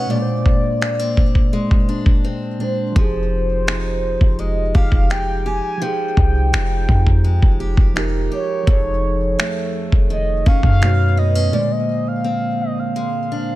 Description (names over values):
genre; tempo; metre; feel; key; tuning
contemporary R&B; 84 BPM; 4/4; straight; F dorian; A4 = 440 Hz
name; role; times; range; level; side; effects
mellow horn-like synth lead; melody; 0.0-13.6 s; C5 to Ab5; -24 LUFS; equal; chorus, digital delay
muted felt-like synth keys; accompaniment; 0.0-13.6 s; Bb2 to C#5; -25 LUFS; right 3 dB; chorus
picked steel-string acoustic guitar; arpeggios; 0.0-13.6 s; F2 to G4; -26 LUFS; left 3 dB; digital delay
dusty soul sampler-style drum kit; drums; 0.5-11.0 s; finger snaps, kick drum; -16 LUFS; equal; vintage 12-bit sampler grit
clean 808-style bass; bass; 3.0-11.5 s; F1 to Gb2; -18 LUFS; equal; none
room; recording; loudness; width
little or no reverb; none; -15 LUFS; side -16 dB against mid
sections
0.0-13.6 A section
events
break 2.2-3.0, 11.5-13.6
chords
0.1 Bb9; 3.0 Fm9; 8.7 F7alt; 10.8 B9; 11.5 Bb9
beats
| 0.10 0.81 1.53 2.24 | 2.96 3.67 4.39 5.10 | 5.82 6.53 7.24 7.96 | 8.67 9.39 10.10 10.81 | 11.53 12.24 12.96